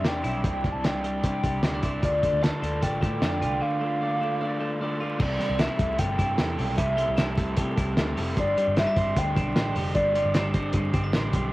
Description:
jangly indie pop; 152 BPM; 4/4; straight; C major; A4 = 441 Hz
hollow clarinet-like synth lead; melody; 0.0-10.7 s; D5 to A5; -28 LUFS; equal; chorus, phaser, cassette tape
raw garage guitar; accompaniment; 0.0-11.5 s; C3 to D5; -32 LUFS; right 2 dB; overdrive, cassette tape
twelve-string electric guitar; arpeggios; 0.0-11.5 s; G2 to F4; -31 LUFS; left 1 dB; cassette tape, analog delay
vintage muted picked electric bass; bass; 0.0-11.5 s; F1 to C3; -31 LUFS; equal
cloth-damped thuddy drum kit; drums; 0.0-11.4 s; crash cymbal, hi-hat, kick drum, snare drum; -26 LUFS; equal; cassette tape
light reverb; home recording on cassette, vinyl crackle; -23 LUFS; side -18 dB against mid
0.0-5.2 A section; 5.2-11.5 B section
break 3.6-5.2
0.0 Cadd9; 2.0 Dm; 5.2 C6; 8.4 Gsus4

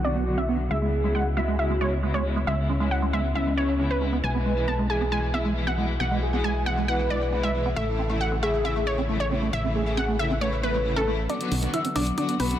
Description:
uplifting trance; 136 BPM; 4/4; straight; B dorian; A4 = 441 Hz
wide unison pluck; melody; 0.0-12.6 s; B3 to A5; -29 LUFS; equal; digital delay
warm velvety synth lead; second line; 0.0-11.2 s; C#4 to B4; -30 LUFS; left 1 dB; chorus, digital delay
warm studio string section; sustained chords; 0.0-12.6 s; B2 to F#4; -30 LUFS; left 2 dB; low-pass filter
liquid acid bass; arpeggios; 0.0-12.5 s; G#3 to C#4; -31 LUFS; right 4 dB; phaser, wide subtle chorus, digital delay
solid FM bass; bass; 0.0-12.6 s; A1 to C#2; -28 LUFS; equal
dark concert grand piano; second line; 11.3-12.6 s; B5 to E6; -31 LUFS; left 3 dB; low-pass filter, digital delay
electronic hi-hat; drums; 11.3-12.6 s; -35 LUFS; equal; high-pass filter on hats
light reverb, digital ambience; dense, heavily limited modern master, low-pass filter; -22 LUFS; side -11 dB against mid
0.0-11.3 A section; 11.3-12.6 B section
filter sweep on acid bass 0.0-11.3, 11.3-12.6; filter sweep on string section 0.0-11.3; filter sweep 0.0-11.3; build-up 11.3-12.6; filter sweep on synth pluck 11.3-12.6
0.0 Bm; 0.7 C#m7; 4.2 E/B; 7.8 A; 11.3 Bm

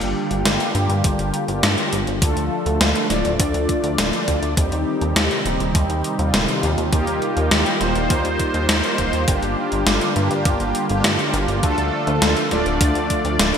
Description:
synthwave; 102 BPM; 4/4; straight; G minor; A4 = 442 Hz
phased analog pad; sustained chords; 0.0-13.6 s; C3 to A4; -25 LUFS; equal; phaser, chorus, sidechain pumping
mellow synth brass; stabs; 0.0-13.6 s; G3 to D5; -23 LUFS; equal; chorus, phaser, digital delay
chorused synth bass; bass; 0.0-13.5 s; D1 to G2; -23 LUFS; equal
gated 80s digital drum machine; drums; 0.0-13.6 s; hi-hat, snare drum; -22 LUFS; equal; gated reverb, gated reverb snare, overdrive
electronic kick drum; drums; 1.0-13.2 s; -21 LUFS; equal; overdrive
moderate lush hall reverb, RT60 2.7 s; bright 1980s-style digital production; -17 LUFS; side -7 dB against mid
0.0-13.6 A section
0.0 Gm7; 2.2 Dm; 4.6 Cm/Eb; 6.9 Ebadd9; 9.3 Gm7; 11.6 Dm

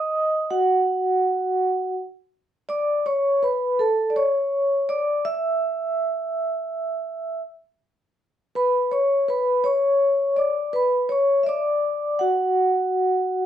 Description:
hip hop; 82 BPM; 4/4; swing 64% on 16ths; B minor; A4 = 440 Hz
vibraphone with soft mallets; solo; 0.0-13.5 s; F#4 to E6; -20 LUFS; equal; slapback echo
light reverb; dark, warm production; -20 LUFS; side -10 dB against mid
0.0-13.5 A section
vibraphone solo 0.0-13.5
0.0 D#m/F#; 2.7 E5; 5.6 N.C.; 8.5 Bmadd9

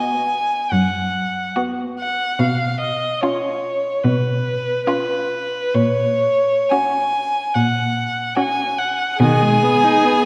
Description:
classical, slow romantic movement for string quartet; 72 BPM; 4/4; rubato; F# major; A4 = 440 Hz
rich violin; melody; 0.0-10.3 s; B4 to G#5; -21 LUFS; equal
rich violin; second line; 0.0-10.3 s; E#4 to G#4; -27 LUFS; equal
clear viola; accompaniment; 0.0-10.3 s; D#3 to D#4; -25 LUFS; equal
clear cello; bass; 0.7-9.9 s; F#2 to B2; -23 LUFS; equal
wet scoring stage reverb, RT60 1.9 s; dark, warm production; -19 LUFS; mono
0.0-10.3 A section
0.0 B5; 2.4 C#7/B; 5.7 F#/A#; 9.2 G#m/B

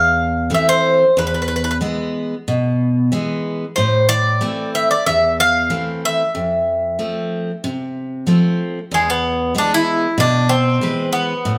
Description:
greek folk, Greek bouzouki band; 93 BPM; 4/4; straight; E phrygian dominant; A4 = 440 Hz
Greek bouzouki; melody; 0.0-11.6 s; G#3 to F5; -18 LUFS; equal
picked steel-string acoustic guitar; accompaniment; 0.0-11.6 s; E2 to B4; -22 LUFS; equal
moderate large studio reverb, RT60 1.2 s; band playing live in one room; -18 LUFS; mono
0.0-8.9 A section; 8.9-11.6 B section
speeding up 0.0-11.6
0.0 Am; 1.2 E; 3.8 Am; 6.3 F; 8.9 E

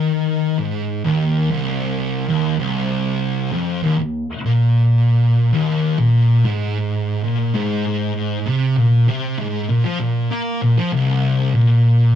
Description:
metal; 97 BPM; 4/4; straight; A4 = 441 Hz
thick fuzz guitar; solo; 0.0-12.1 s; C2 to Bb3; -16 LUFS; equal; distortion
moderate small room reverb, RT60 0.5 s; rough rehearsal-room recording, tube saturation; -16 LUFS; side -9 dB against mid
0.0-10.9 A section; 10.9-12.2 B section

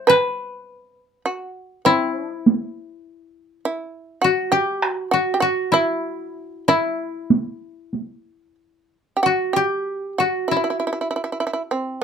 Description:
japanese traditional, Japanese chamber music; 46-51 BPM; 4/4; rubato; E hirajoshi; A4 = 441 Hz
koto; melody; 0.0-12.0 s; E4 to C6; -21 LUFS; left 3 dB
shamisen; second line; 0.0-12.0 s; C4 to B4; -21 LUFS; right 3 dB
taiko ensemble; percussion; 0.1-8.2 s; -18 LUFS; right 4 dB
moderate small room ambience, RT60 0.5 s; -19 LUFS; side -7 dB against mid
0.0-9.9 A section; 9.9-12.0 B section

